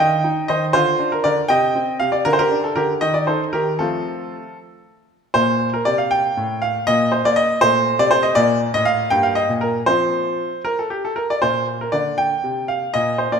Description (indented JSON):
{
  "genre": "classical-period piano sonatina",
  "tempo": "79 BPM (dotted quarters)",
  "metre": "6/8",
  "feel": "straight",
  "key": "Bb major",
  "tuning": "A4 = 440 Hz",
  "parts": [
    { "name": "clear grand piano", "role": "solo", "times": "0.0-13.4 s", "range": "G2 to G5", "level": "-16 LUFS", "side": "equal", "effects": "none" }
  ],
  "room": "wet recital hall reverb, RT60 1.6 s",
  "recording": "minimal, uncompressed stereo recording",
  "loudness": "-16 LUFS",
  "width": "side -6 dB against mid",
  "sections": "0.0-5.3 A section; 5.3-13.4 B section",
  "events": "none",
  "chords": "0.0 Eb; 0.7 Bb/D; 1.5 Cmadd9; 2.3 Bbmaj13/D; 3.0 Ebmaj7#11; 3.8 F; 5.3 Bbmaj7sus2; 6.9 N.C.; 7.6 Bbmaj9; 8.4 Bb; 9.1 Gm7; 9.9 F5; 11.4 Bb"
}